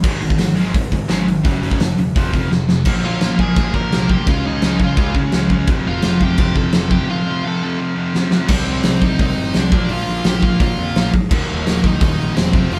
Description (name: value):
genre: punk rock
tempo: 171 BPM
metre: 4/4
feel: straight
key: unclear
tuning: A4 = 440 Hz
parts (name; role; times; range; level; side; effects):
- overdriven electric guitar; riff; 0.0-12.8 s; Eb2 to Db4; -28 LUFS; equal; none
- sludgy distorted guitar; riff; 0.0-12.8 s; Eb2 to Db4; -25 LUFS; equal; overdrive
- growling picked electric bass; bass; 0.0-12.8 s; Eb1 to Bb2; -26 LUFS; equal; overdrive
- big rock drum kit; drums; 0.0-12.8 s; crash cymbal, hi-hat, kick drum, snare drum; -19 LUFS; equal; none
- dark smooth lead guitar; melody; 3.0-12.8 s; Bb3 to Bb5; -27 LUFS; equal; overdrive
room: light reverb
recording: band playing live in one room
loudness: -17 LUFS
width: mono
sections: 0.0-2.9 A section; 2.9-8.5 B section; 8.5-12.8 C section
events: drum fill 2.5-2.9, 8.1-8.5; break 7.1-8.5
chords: 0.0 Ab5; 1.5 Gb5; 2.2 F5; 2.9 Bb5; 4.3 Db; 5.7 F; 8.5 Cm; 9.7 Bb; 11.3 Eb5